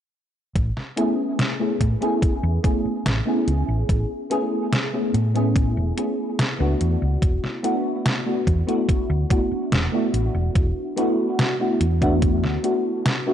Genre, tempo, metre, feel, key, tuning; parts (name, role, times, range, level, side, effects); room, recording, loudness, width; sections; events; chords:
vaporwave; 72 BPM; 4/4; straight; A major; A4 = 442 Hz
hollow-body short-scale fingered electric bass; bass; 0.6-12.6 s; E1 to A2; -22 LUFS; equal
detuned 8-bit digital drum machine; drums; 0.6-13.2 s; hi-hat, snare drum; -24 LUFS; equal; overdrive, vintage 12-bit sampler grit
electronic kick drum; drums; 0.6-12.4 s; -21 LUFS; equal; overdrive, vintage 12-bit sampler grit
mellow FM electric piano; accompaniment; 1.0-13.3 s; A3 to G#4; -23 LUFS; equal; phaser, ensemble chorus, tape echo
light reverb, digital ambience; cassette tape; -19 LUFS; side -10 dB against mid
0.6-13.3 A section
0.6 Amaj7; 6.8 E7sus4